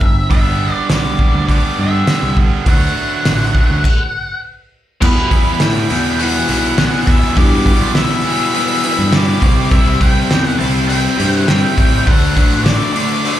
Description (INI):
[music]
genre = quiet-loud alternative rock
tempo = 102 BPM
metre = 4/4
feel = straight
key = E minor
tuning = A4 = 439 Hz
[part]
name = octave-fuzz lead guitar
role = melody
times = 0.0-13.4 s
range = B4 to A5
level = -20 LUFS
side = left 2 dB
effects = distortion, slapback echo
[part]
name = growling picked electric bass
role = bass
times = 0.0-12.8 s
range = G1 to A2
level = -17 LUFS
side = equal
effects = overdrive
[part]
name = loose indie drum kit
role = drums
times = 0.0-13.4 s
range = crash cymbal, hi-hat, kick drum, snare drum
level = -15 LUFS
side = equal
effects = none
[part]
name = tight distorted guitar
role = riff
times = 0.3-13.4 s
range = G2 to E4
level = -20 LUFS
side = right 10 dB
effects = distortion, slapback echo
[part]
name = overdriven electric guitar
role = riff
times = 5.0-13.4 s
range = E2 to D4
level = -19 LUFS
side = left 8 dB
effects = slapback echo
[sound]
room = little or no reverb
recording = live gig heard through the venue's PA, club reverb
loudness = -11 LUFS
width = side -12 dB against mid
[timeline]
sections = 0.0-5.0 A section; 5.0-13.4 B section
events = stop 3.8-5.0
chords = 0.0 G; 2.7 D; 5.0 Em; 9.4 C; 12.1 D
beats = | 0.31 0.90 1.49 2.08 | 2.66 3.25 3.84 4.43 | 5.02 5.60 6.19 6.78 | 7.37 7.95 8.54 9.13 | 9.72 10.30 10.89 11.48 | 12.07 12.66 13.25